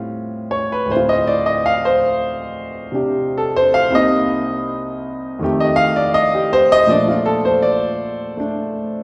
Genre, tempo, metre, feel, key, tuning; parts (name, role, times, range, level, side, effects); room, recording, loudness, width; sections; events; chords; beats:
solo jazz; 80 BPM; 4/4; swing 67% on 8ths, rubato; Bb major; A4 = 440 Hz
clear grand piano; solo; 0.0-9.0 s; C2 to F5; -18 LUFS; equal
wet scoring stage reverb, RT60 1.6 s; recorded in a church or concert hall; -17 LUFS; mono
0.0-9.0 A section
grand piano solo 0.0-9.0
0.0 A7alt; 0.9 Dm7; 3.9 Cm7; 5.4 F9; 6.9 Bbmaj7
0.13 | 0.90 1.66 2.42 3.17 | 3.92 4.66 5.41 6.15 | 6.90 7.64 8.39